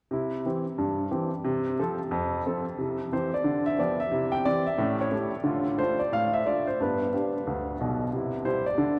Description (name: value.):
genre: jazz, stride piano.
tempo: 180 BPM.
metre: 4/4.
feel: swing 63% on 8ths.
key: C major.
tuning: A4 = 440 Hz.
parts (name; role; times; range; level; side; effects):
clear upright piano; solo; 0.1-9.0 s; B1 to G5; -28 LUFS; equal; none.
room: wet cathedral reverb, RT60 5.5 s.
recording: recorded in a church or concert hall.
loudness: -28 LUFS.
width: mono.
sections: 0.1-2.8 A section; 2.8-9.0 B section.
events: none.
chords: 0.1 C; 1.4 F/C; 2.8 C; 3.5 G7/D; 4.1 C; 4.8 A7; 5.5 Dm; 6.8 G; 8.1 C.